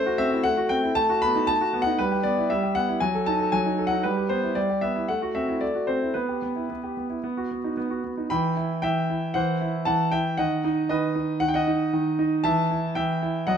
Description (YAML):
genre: classical-period piano sonatina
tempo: 116 BPM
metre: 4/4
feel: straight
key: E minor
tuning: A4 = 440 Hz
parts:
  - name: clear grand piano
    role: solo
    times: 0.0-13.6 s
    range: D#3 to B5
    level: -22 LUFS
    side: equal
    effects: none
room: wet stone room reverb, RT60 1.3 s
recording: none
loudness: -22 LUFS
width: side -8 dB against mid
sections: 0.0-8.3 A section; 8.3-13.6 B section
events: none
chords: 0.0 F#m7b5/A; 1.0 B7/A; 2.0 Em/G; 3.0 D#dim/F#; 4.1 Em/G; 5.1 F#m7b5/A; 6.2 Em/B; 7.2 B; 8.3 Em; 9.4 Am6/E; 10.4 B/D#; 12.4 N.C.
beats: 0.44 0.95 1.47 | 1.99 2.50 3.02 3.53 | 4.05 4.57 5.09 5.62 | 6.16 6.70 7.24 7.77 | 8.31 8.84 9.35 9.87 | 10.39 10.90 11.41 11.93 | 12.44 12.96 13.47